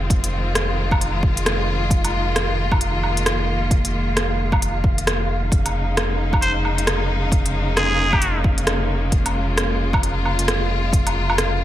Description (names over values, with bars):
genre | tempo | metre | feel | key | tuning
future garage | 133 BPM | 4/4 | swing 60% on 16ths | F minor | A4 = 438 Hz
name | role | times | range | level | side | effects
rich chamber string section | sustained chords | 0.0-11.6 s | Db3 to F4 | -25 LUFS | left 2 dB | sidechain pumping
warm sub bass | bass | 0.0-11.6 s | F1 | -23 LUFS | equal | sidechain pumping
wind-like tuned noise texture | texture | 0.0-11.6 s | F5 | -32 LUFS | right 4 dB | built-in reverb
electronic kick drum | drums | 0.1-11.0 s | none | -20 LUFS | equal | overdrive
organic electronic drum kit | drums | 0.1-11.5 s | hi-hat, rim click, woodblock | -23 LUFS | equal | overdrive
trumpet with straight mute | melody | 6.4-8.4 s | Ab4 to C5 | -23 LUFS | equal | dub echo
room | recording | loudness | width
light reverb, digital ambience | none | -17 LUFS | side -12 dB against mid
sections
0.0-11.6 A section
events
none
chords
0.0 Fm7; 5.5 Eb7sus4/F; 9.1 Db6/F